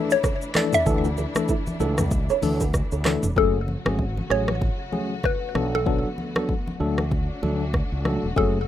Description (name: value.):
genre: afrobeats.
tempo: 96 BPM.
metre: 4/4.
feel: swing 58% on 16ths.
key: unclear.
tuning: A4 = 437 Hz.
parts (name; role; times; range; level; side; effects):
mallet-like synth pluck; melody; 0.0-8.7 s; A4 to E5; -24 LUFS; left 3 dB; chorus, phaser, digital delay.
tine electric piano; accompaniment; 0.0-8.6 s; E3 to A4; -26 LUFS; left 2 dB; medium stereo tremolo.
warm studio string section; sustained chords; 0.0-8.7 s; C#3 to F#4; -35 LUFS; left 2 dB; none.
flamenco guitar; riff; 0.1-3.2 s; E4 to D5; -29 LUFS; right 10 dB; digital delay.
deep house drum kit; drums; 0.1-8.5 s; handclaps, hi-hat, kick drum, rim click, shaker, toms; -26 LUFS; equal; none.
congas; percussion; 0.2-8.2 s; none; -34 LUFS; equal; none.
fretless electric bass; bass; 0.9-8.7 s; E1 to D2; -26 LUFS; equal; analog chorus.
room: little or no reverb.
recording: rough home demo mix.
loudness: -21 LUFS.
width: side -11 dB against mid.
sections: 0.0-3.4 A section; 3.4-8.7 B section.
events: hi-hats muted 3.4-8.7.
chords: 0.0 Dsus2; 3.4 F#madd9; 5.6 Bm7; 6.8 D.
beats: 0.24 | 0.86 1.49 2.11 2.74 | 3.36 3.99 4.61 5.24 | 5.86 6.49 7.11 7.74 | 8.36.